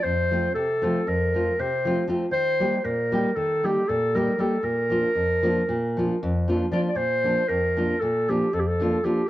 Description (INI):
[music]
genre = balkan folk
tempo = 233 BPM (eighths)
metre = 9/8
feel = straight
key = Bb major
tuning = A4 = 440 Hz
[part]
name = warm clarinet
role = melody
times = 0.0-9.3 s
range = G4 to D5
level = -24 LUFS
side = equal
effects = none
[part]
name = nylon-string guitar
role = accompaniment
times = 0.0-9.2 s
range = F2 to G4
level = -25 LUFS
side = equal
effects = cassette tape
[sound]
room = light reverb, small room ambience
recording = home recording on cassette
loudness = -21 LUFS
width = side -14 dB against mid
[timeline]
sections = 0.0-7.0 A section; 7.0-9.3 A section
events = none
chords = 0.0 F; 2.3 Eb; 4.6 Bb